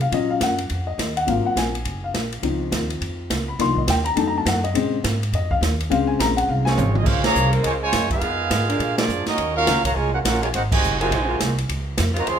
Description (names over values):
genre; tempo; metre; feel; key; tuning
jazz, big band swing; 207 BPM; 4/4; swing 62% on 8ths; Bb minor; A4 = 439 Hz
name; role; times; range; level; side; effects
dark baby grand piano; accompaniment; 0.0-7.0 s; Db3 to C6; -22 LUFS; left 4 dB; none
upright bass; bass; 0.0-12.4 s; Gb1 to C3; -25 LUFS; right 1 dB; none
open jazz drum kit; drums; 0.0-12.4 s; crash cymbal, hi-hat, kick drum, ride cymbal, snare drum, toms; -25 LUFS; right 1 dB; none
clear trumpet section; melody; 6.7-12.4 s; Ab3 to C6; -23 LUFS; right 2 dB; none
muted trombone section; second line; 6.7-12.4 s; C3 to Gb4; -27 LUFS; right 3 dB; none
mellow saxophone section; sustained chords; 7.0-12.4 s; C3 to Bb4; -28 LUFS; equal; none
room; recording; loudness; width
moderate large studio reverb, RT60 1.1 s; minimal, uncompressed stereo recording; -19 LUFS; side -8 dB against mid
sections
0.0-7.1 A section; 7.1-12.4 B section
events
grand piano solo 0.0-7.1; drum fill 6.5-7.1; band accent 7.2, 8.9, 10.7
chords
0.1 Ebm9; 1.3 Ab13; 2.4 Dbmaj7; 3.6 Cm11; 4.2 F7b9; 4.7 Bbm9; 8.2 Fm7b5; 8.8 Bb7b13; 9.4 Ebm9; 10.5 Ab13; 11.7 Dbmaj7